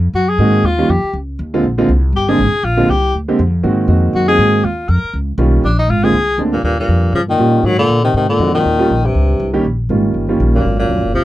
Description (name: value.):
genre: jazz, small-group swing and bop.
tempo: 240 BPM.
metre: 4/4.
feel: swing 57% on 8ths.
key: Eb major.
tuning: A4 = 439 Hz.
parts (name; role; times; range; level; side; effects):
upright bass; bass; 0.0-11.2 s; Gb1 to Bb2; -15 LUFS; equal; none.
clear tenor saxophone; melody; 0.2-11.2 s; Bb2 to Bb4; -16 LUFS; left 2 dB; none.
clear upright piano; accompaniment; 0.4-10.6 s; D3 to G4; -16 LUFS; right 2 dB; none.
breathy trombone; second line; 6.5-11.2 s; Gb2 to Eb3; -20 LUFS; right 2 dB; none.
room: little or no reverb.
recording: dry, close 1970s-style studio recording.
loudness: -12 LUFS.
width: side -15 dB against mid.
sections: 0.0-6.6 A section; 6.6-11.2 B section.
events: tenor saxophone solo 0.0-6.6.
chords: 0.0 Ab9; 0.6 Eb9; 1.6 Bb9; 3.6 Ab9; 4.6 Eb9; 5.6 Bb9; 6.6 Eb9; 7.6 Ab9; 8.6 Eb9; 10.6 Ab9.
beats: 0.14 0.39 | 0.64 0.89 1.14 1.39 | 1.64 1.89 2.14 2.39 | 2.64 2.89 3.14 3.39 | 3.64 3.89 4.14 4.39 | 4.64 4.89 5.14 5.39 | 5.64 5.89 6.14 6.39 | 6.64 6.89 7.14 7.39 | 7.64 7.89 8.14 8.39 | 8.64 8.89 9.14 9.39 | 9.64 9.89 10.15 10.40 | 10.65 10.90 11.15.